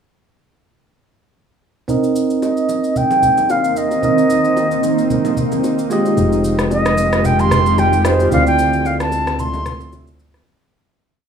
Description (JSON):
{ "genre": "amapiano", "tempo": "112 BPM", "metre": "4/4", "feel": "swing 55% on 16ths", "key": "C minor", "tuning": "A4 = 440 Hz", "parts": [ { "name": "bell-like tine electric piano", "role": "accompaniment", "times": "1.9-10.5 s", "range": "Ab3 to Eb5", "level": "-19 LUFS", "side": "right 2 dB", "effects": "low-pass filter" }, { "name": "granular cloud pad", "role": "sustained chords", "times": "3.0-10.4 s", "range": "D3 to E5", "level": "-20 LUFS", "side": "equal", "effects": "built-in reverb, low-pass filter" }, { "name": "electronic shaker and rim click", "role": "drums", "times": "1.9-10.5 s", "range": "none", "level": "-26 LUFS", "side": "left 1 dB", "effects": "none" }, { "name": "congas and bongos", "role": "percussion", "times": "1.9-10.5 s", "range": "none", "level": "-25 LUFS", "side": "left 1 dB", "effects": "none" }, { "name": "reedy concert flute", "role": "melody", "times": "2.4-9.9 s", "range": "C5 to C6", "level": "-17 LUFS", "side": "right 1 dB", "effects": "low-pass filter, tape echo" }, { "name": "fat analog bass", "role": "bass", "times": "6.2-10.4 s", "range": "F1 to D2", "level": "-19 LUFS", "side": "equal", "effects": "none" } ], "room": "light reverb", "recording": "rough home demo mix, small room reverb", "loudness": "-13 LUFS", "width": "side -7 dB against mid", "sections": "1.9-10.5 breakdown", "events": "filter sweep 1.9-10.5; break 8.3-10.5; fade-out 8.3-10.5", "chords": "1.9 Cm7; 5.9 Fm9; 8.3 Dm9" }